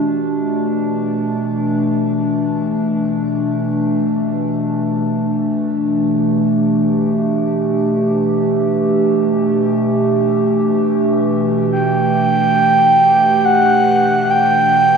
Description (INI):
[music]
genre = ambient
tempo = free time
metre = none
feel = none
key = G major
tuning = A4 = 439 Hz
[part]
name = warbly tape-like pad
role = sustained chords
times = 0.0-15.0 s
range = B2 to G4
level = -15 LUFS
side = equal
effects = chorus, built-in reverb, shimmer reverb
[part]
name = breathy flute-like synth lead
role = melody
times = 11.7-15.0 s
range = F#5 to G5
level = -12 LUFS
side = right 1 dB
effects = chorus, shimmer reverb, tape echo
[sound]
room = wet cathedral reverb, RT60 5.7 s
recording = nothing above 11.0 kHz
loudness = -13 LUFS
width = side -6 dB against mid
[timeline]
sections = 0.0-4.9 A section; 4.9-15.0 B section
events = none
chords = 0.0 G69/B